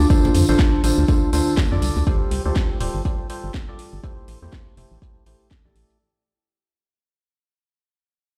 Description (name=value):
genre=piano house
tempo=122 BPM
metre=4/4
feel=swing 58% on 16ths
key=unclear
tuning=A4 = 439 Hz
part: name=percussive organ stab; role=riff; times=0.0-6.0 s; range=D3 to D5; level=-24 LUFS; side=equal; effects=lush chorus, sidechain pumping
part: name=organ-like FM bass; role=bass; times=0.0-5.8 s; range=D1 to F2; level=-23 LUFS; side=equal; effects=tube saturation, sidechain pumping
part: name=tambourine and congas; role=percussion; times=0.0-2.0 s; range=none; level=-32 LUFS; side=equal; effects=none
part: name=cloth-damped thuddy drum kit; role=drums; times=0.1-6.0 s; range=hi-hat, snare drum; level=-43 LUFS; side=equal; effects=none
part: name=electronic kick drum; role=drums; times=0.1-5.6 s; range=none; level=-22 LUFS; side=equal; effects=none
part: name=house drum kit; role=drums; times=0.3-5.9 s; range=hi-hat, snare drum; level=-33 LUFS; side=equal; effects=none
room=light reverb, small room ambience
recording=played on a big sound system in a bare room, stone room reverb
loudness=-19 LUFS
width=mono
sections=0.0-6.0 A section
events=fade-out 0.0-6.0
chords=0.0 Dm7; 2.1 G9sus4; 4.0 Am7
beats=| 0.10 0.59 1.08 1.58 | 2.07 2.56 3.05 3.54 | 4.04 4.53 5.02 5.51